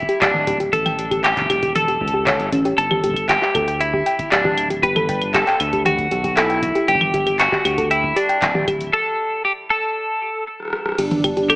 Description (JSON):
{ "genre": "IDM", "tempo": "117 BPM", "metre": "4/4", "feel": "straight", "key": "G lydian", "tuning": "A4 = 440 Hz", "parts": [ { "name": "twelve-string electric guitar", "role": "melody", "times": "0.0-11.6 s", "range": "D4 to B4", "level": "-19 LUFS", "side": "equal", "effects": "analog delay" }, { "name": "electronic kick drum", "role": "drums", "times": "0.0-11.6 s", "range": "none", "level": "-31 LUFS", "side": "equal", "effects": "none" }, { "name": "thumb-piano-like synth pluck", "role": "arpeggios", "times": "0.1-11.6 s", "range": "C#4 to G5", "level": "-21 LUFS", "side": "equal", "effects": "chorus, analog delay" }, { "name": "booming analog drum machine", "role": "drums", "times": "0.1-11.6 s", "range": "claves, crash cymbal, handclaps, hi-hat, rim click, toms", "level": "-22 LUFS", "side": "equal", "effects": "none" }, { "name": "round analog bass", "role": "bass", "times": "0.2-11.6 s", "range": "D1 to D2", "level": "-27 LUFS", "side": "equal", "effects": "none" }, { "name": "hollow soft pad", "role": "sustained chords", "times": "11.0-11.6 s", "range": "D4 to B4", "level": "-22 LUFS", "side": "right 2 dB", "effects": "chorus" } ], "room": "light reverb, digital ambience", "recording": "echo-heavy mix, AM radio sound", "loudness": "-16 LUFS", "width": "side -24 dB against mid", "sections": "0.0-11.0 A section", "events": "break 8.9-11.0; drum fill 10.6-11.0", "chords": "0.0 G5; 0.7 A; 2.8 G5; 4.8 Emadd9/G; 6.9 G5; 8.9 N.C.; 11.0 G5" }